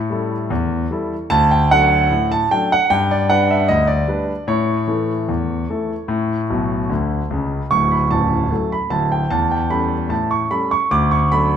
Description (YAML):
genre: ragtime piano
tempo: 75 BPM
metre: 2/4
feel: straight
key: D major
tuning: A4 = 440 Hz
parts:
  - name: clear grand piano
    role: solo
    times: 0.0-11.6 s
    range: A0 to D6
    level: -16 LUFS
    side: equal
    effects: none
room: wet large studio reverb, RT60 1.4 s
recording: band playing live in one room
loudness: -16 LUFS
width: side -8 dB against mid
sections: 0.0-11.6 A section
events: grand piano fill 6.5-7.7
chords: 0.0 A7; 1.3 D; 2.9 G; 4.5 A; 7.7 D; 9.3 A7/E; 10.9 D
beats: 0.50 | 1.30 2.09 | 2.89 3.69 | 4.49 5.29 | 6.10 6.90 | 7.70 8.50 | 9.30 10.11 | 10.90